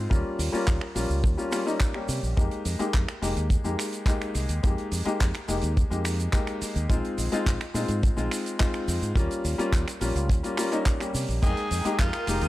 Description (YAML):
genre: nu-disco, nu disco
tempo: 106 BPM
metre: 4/4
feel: straight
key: F minor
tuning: A4 = 438 Hz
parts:
  - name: clear grand piano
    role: accompaniment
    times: 0.0-12.5 s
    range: G3 to G5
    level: -29 LUFS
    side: left 2 dB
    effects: sidechain pumping, low-pass filter, analog delay
  - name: fingered electric bass with an envelope filter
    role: bass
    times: 0.0-12.5 s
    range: F1 to C3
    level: -29 LUFS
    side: equal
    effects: none
  - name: damped 70s drum kit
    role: drums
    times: 0.1-12.5 s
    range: crash cymbal, finger snaps, handclaps, hi-hat, shaker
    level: -34 LUFS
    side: right 2 dB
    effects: small room ambience
  - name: kick drum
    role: drums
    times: 0.1-12.1 s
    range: none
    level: -24 LUFS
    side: equal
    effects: small room ambience
  - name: raspy tenor saxophone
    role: melody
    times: 11.4-12.5 s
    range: F4 to Ab4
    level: -31 LUFS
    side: equal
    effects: none
  - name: string machine, full ensemble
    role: sustained chords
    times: 11.4-12.5 s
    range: Bb4 to Eb6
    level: -34 LUFS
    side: equal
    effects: ensemble chorus, sidechain pumping
room: little or no reverb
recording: dry, gritty hardware recording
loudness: -24 LUFS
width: side -16 dB against mid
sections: 0.0-12.5 A section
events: none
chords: 0.1 Eb7; 2.4 Fm11; 6.9 Bb7sus4; 9.2 Eb7; 11.4 Fm11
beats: | 0.11 0.67 1.24 1.80 | 2.37 2.94 3.50 4.07 | 4.63 5.20 5.77 6.33 | 6.90 7.46 8.03 8.60 | 9.16 9.73 10.29 10.86 | 11.43 11.99